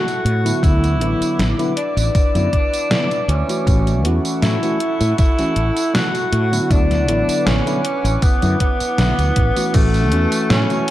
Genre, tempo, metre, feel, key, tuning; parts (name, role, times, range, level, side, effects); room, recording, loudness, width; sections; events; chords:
vaporwave; 79 BPM; 4/4; swing 53% on 16ths; A major; A4 = 440 Hz
breathy tenor saxophone; melody; 0.0-10.9 s; A3 to F#4; -21 LUFS; equal; vintage 12-bit sampler grit, tape echo
tine electric piano; accompaniment; 0.0-10.8 s; D3 to F#4; -23 LUFS; equal; analog chorus, vintage 12-bit sampler grit
warbly tape-like pad; sustained chords; 0.0-10.9 s; E4 to D6; -28 LUFS; right 1 dB; chorus, built-in reverb
detuned 8-bit digital drum machine; drums; 0.1-10.9 s; crash cymbal, hi-hat, snare drum, tambourine; -23 LUFS; equal; overdrive, gated reverb
mellow fretless electric bass; bass; 0.2-10.6 s; A1 to A2; -18 LUFS; equal
electronic kick drum; drums; 0.6-9.9 s; -16 LUFS; equal; overdrive
light reverb; -15 LUFS; side -14 dB against mid
0.0-9.7 A section; 9.7-10.9 B section
band accent 9.0-9.4
0.0 A6